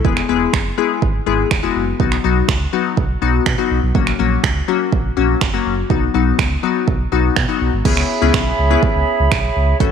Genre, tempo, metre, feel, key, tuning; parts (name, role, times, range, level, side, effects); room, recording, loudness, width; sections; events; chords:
dance-pop; 123 BPM; 4/4; straight; A4 = 440 Hz
glassy wavetable pluck; accompaniment; 0.0-9.9 s; F#3 to A4; -18 LUFS; left 11 dB; chorus, sidechain pumping
sub bass with octave; bass; 0.0-9.9 s; E1 to B2; -19 LUFS; right 1 dB; sidechain pumping
deep house drum kit; drums; 0.0-9.9 s; crash cymbal, finger snaps, hi-hat, kick drum; -19 LUFS; right 4 dB
flute section; sustained chords; 7.9-9.9 s; G#4 to C#6; -18 LUFS; right 4 dB; sidechain pumping
moderate echo chamber reverb, RT60 1.9 s; 1960s-style stereo; -14 LUFS; side -7 dB against mid
0.0-7.9 A section; 7.9-9.9 B section
0.0 E; 2.0 B; 4.0 F#/A#; 5.9 B; 7.9 C#m7